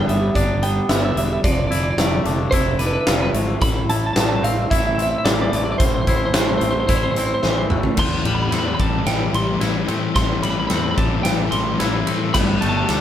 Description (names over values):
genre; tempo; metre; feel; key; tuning
post-rock; 110 BPM; 4/4; straight; A minor; A4 = 441 Hz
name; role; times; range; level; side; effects
twelve-string electric guitar; melody; 0.0-13.0 s; B4 to C6; -24 LUFS; right 2 dB; none
chorused pulse-width pad; sustained chords; 0.0-13.0 s; C3 to B4; -30 LUFS; right 2 dB; none
twangy electric guitar; arpeggios; 0.0-13.0 s; G2 to E4; -25 LUFS; left 3 dB; none
fuzz fingered electric bass; bass; 0.1-13.0 s; E1 to A2; -24 LUFS; equal; overdrive
huge arena drum kit; drums; 0.1-13.0 s; crash cymbal, hi-hat, kick drum, ride cymbal, snare drum, toms; -21 LUFS; equal; none
sludgy distorted guitar; riff; 8.0-13.0 s; A2 to A3; -24 LUFS; left 7 dB; overdrive
room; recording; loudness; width
moderate large studio reverb, RT60 0.9 s; band playing live in one room; -17 LUFS; side -10 dB against mid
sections
0.0-8.0 A section; 8.0-13.0 B section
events
drum fill 7.4-8.0, 8.0-13.0; build-up 8.0-13.0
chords
0.0 G; 1.4 Dmadd9/F; 3.6 Am; 8.0 Am7; 12.3 Gsus2